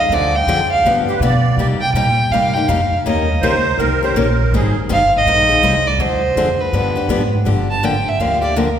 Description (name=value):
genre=acoustic string swing (jazz manouche)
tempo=163 BPM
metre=4/4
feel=swing 63% on 8ths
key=C minor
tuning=A4 = 440 Hz
part: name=rich violin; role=melody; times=0.0-8.8 s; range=Bb4 to A5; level=-16 LUFS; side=right 1 dB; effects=none
part: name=upright bass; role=bass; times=0.0-8.8 s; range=G1 to C3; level=-19 LUFS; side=equal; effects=none
part: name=picked steel-string acoustic guitar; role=accompaniment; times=0.1-8.7 s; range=C3 to Bb4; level=-19 LUFS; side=left 3 dB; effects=none
part: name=musette accordion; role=second line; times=1.1-4.8 s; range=G4 to D5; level=-21 LUFS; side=right 4 dB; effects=none
room=wet concert hall reverb, RT60 2.5 s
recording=recorded in a church or concert hall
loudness=-13 LUFS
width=side -9 dB against mid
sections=0.0-7.5 A section; 7.5-8.8 B section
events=violin solo 7.5-8.8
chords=0.1 Dm7b5; 0.8 G7; 1.6 Cm7; 3.0 Eb7; 4.5 Abmaj9; 6.0 Dm7b5; 6.7 G7; 7.5 Gm7